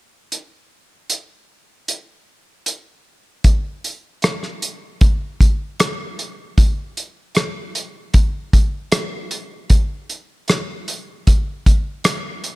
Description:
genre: soul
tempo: 77 BPM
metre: 4/4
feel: straight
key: none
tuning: none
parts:
  - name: warm soul drum kit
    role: drums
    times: 0.3-12.6 s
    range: hi-hat, kick drum, rim click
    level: -16 LUFS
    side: equal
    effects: none
room: little or no reverb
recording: none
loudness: -18 LUFS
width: side -21 dB against mid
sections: 0.3-3.4 A section; 3.4-12.6 B section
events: none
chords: none

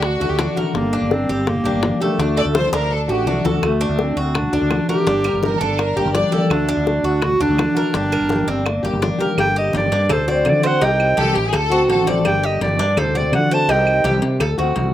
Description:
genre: latin, Cuban son and guajira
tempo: 167 BPM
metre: 4/4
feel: straight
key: G harmonic minor, G minor from 9.4 s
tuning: A4 = 440 Hz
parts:
  - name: clear studio violin section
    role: second line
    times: 0.0-6.4, 11.2-12.1 s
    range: F#4 to D5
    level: -22 LUFS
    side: equal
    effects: slapback echo
  - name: flamenco guitar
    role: accompaniment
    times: 0.0-14.9 s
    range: C3 to G4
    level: -24 LUFS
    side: left 3 dB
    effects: slapback echo
  - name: Cuban tres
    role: arpeggios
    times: 0.0-14.9 s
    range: D4 to D5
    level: -22 LUFS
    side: right 1 dB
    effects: none
  - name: mellow fretless electric bass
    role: bass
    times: 0.0-14.9 s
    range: G1 to D3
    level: -22 LUFS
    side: right 1 dB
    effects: none
  - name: bongos and cowbell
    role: percussion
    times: 0.0-14.9 s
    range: none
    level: -26 LUFS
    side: left 6 dB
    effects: none
  - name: congas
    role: percussion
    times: 0.0-14.9 s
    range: none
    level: -26 LUFS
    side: left 1 dB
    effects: none
  - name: bright clarinet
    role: melody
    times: 0.8-14.2 s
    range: A3 to A5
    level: -21 LUFS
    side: right 1 dB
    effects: slapback echo
  - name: claves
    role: percussion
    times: 3.6-14.6 s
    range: none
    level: -31 LUFS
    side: right 9 dB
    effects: none
room: little or no reverb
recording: recorded outdoors, with no room sound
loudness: -16 LUFS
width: side -12 dB against mid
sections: 0.0-9.4 A section; 9.4-14.9 B section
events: drum fill 2.6-3.6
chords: 0.0 D; 0.8 Gm; 2.2 D; 5.1 Gm; 6.5 D; 7.9 Gm; 10.1 D7; 10.8 Cm; 11.5 D7; 12.3 Gm; 13.0 D7; 13.7 Cm; 14.4 D7

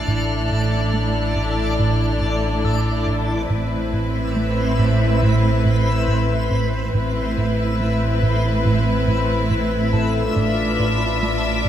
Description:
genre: cinematic, suspense film score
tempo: 70 BPM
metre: 4/4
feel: straight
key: A minor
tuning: A4 = 440 Hz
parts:
  - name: warm symphonic violin section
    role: melody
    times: 0.0-11.7 s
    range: A4 to E5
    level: -27 LUFS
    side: left 3 dB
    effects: none
  - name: warm chamber viola section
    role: accompaniment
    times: 0.0-11.7 s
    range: C4 to F4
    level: -26 LUFS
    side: left 1 dB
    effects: none
  - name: backwards swelling texture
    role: sustained chords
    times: 0.0-11.7 s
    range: C4 to A5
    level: -28 LUFS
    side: left 3 dB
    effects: built-in reverb
  - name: dark studio cello section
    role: bass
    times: 0.0-11.7 s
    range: A2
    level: -25 LUFS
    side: right 3 dB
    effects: none
  - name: dark symphonic double bass section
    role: bass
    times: 0.0-11.7 s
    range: A1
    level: -25 LUFS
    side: right 2 dB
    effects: none
  - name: saturated sub bass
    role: drone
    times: 0.0-11.7 s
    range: A1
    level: -26 LUFS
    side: left 1 dB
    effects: none
  - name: concert harp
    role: texture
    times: 0.0-11.7 s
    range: A4 to C7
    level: -32 LUFS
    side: left 3 dB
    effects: none
  - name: rich studio violin section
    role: texture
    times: 0.0-3.1, 10.4-11.7 s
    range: E6 to C7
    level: -31 LUFS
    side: left 2 dB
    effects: none
  - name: rubbery square bass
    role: riff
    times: 0.1-11.7 s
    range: A2 to A3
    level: -24 LUFS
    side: right 2 dB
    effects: none
room: moderate scoring stage reverb, RT60 2.1 s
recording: none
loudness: -17 LUFS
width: side -10 dB against mid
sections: 0.0-11.7 A section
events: none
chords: 0.0 Dmadd9/A; 3.5 Amadd9; 10.4 Dmadd9/A

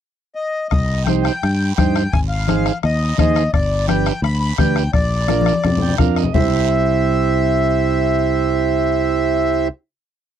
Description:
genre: latin, cumbia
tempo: 171 BPM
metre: 4/4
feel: straight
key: unclear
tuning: A4 = 440 Hz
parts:
  - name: accordion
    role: melody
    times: 0.4-9.7 s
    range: D5 to B5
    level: -21 LUFS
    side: left 3 dB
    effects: none
  - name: fingered electric bass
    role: bass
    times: 0.7-9.7 s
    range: G1 to G2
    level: -19 LUFS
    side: left 1 dB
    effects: none
  - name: bombo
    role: percussion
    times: 0.7-6.4 s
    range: none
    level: -20 LUFS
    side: left 2 dB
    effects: none
  - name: congas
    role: percussion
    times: 0.7-6.4 s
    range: none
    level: -23 LUFS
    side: left 7 dB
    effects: none
  - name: guiro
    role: percussion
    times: 0.7-6.4 s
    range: none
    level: -32 LUFS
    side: right 20 dB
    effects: none
  - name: combo organ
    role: accompaniment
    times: 1.1-9.7 s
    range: D4 to G5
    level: -19 LUFS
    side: right 15 dB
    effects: none
room: little or no reverb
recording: dry, close 1970s-style studio recording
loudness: -15 LUFS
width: side -9 dB against mid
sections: 0.0-0.7 pickup bar; 0.7-6.3 A section; 6.3-9.2 final chord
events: drum fill 5.3-6.3; transistor combo organ fill 5.6-6.3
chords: 0.0 N.C.; 0.7 Cm; 2.1 Ab; 3.5 G; 4.9 Bb; 6.3 C

